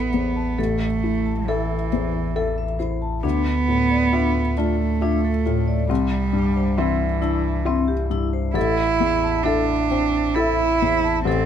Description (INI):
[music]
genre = neoclassical piano and strings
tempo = 67 BPM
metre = 3/4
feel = rubato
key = A minor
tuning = A4 = 442 Hz
[part]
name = warm cello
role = second line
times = 0.0-11.5 s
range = E3 to E4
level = -22 LUFS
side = right 6 dB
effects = none
[part]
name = felt-muted upright piano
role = accompaniment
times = 0.0-11.5 s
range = A1 to E5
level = -25 LUFS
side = left 6 dB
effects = none
[part]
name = vibraphone with medium hard mallets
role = arpeggios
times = 0.0-11.4 s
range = C4 to A5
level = -28 LUFS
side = left 5 dB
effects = slapback echo
[part]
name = pure sine sub bass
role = bass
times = 0.0-11.5 s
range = A1 to D2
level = -26 LUFS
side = equal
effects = none
[sound]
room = little or no reverb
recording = close, detailed microphones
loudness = -19 LUFS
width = side -9 dB against mid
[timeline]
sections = 0.0-11.5 A section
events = none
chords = 0.0 Am; 3.2 Dmadd9; 5.9 Cadd9; 8.6 Am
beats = | 0.58 1.48 2.36 | 3.24 4.13 5.02 | 5.90 6.78 7.66 | 8.55 9.45 10.36 | 11.26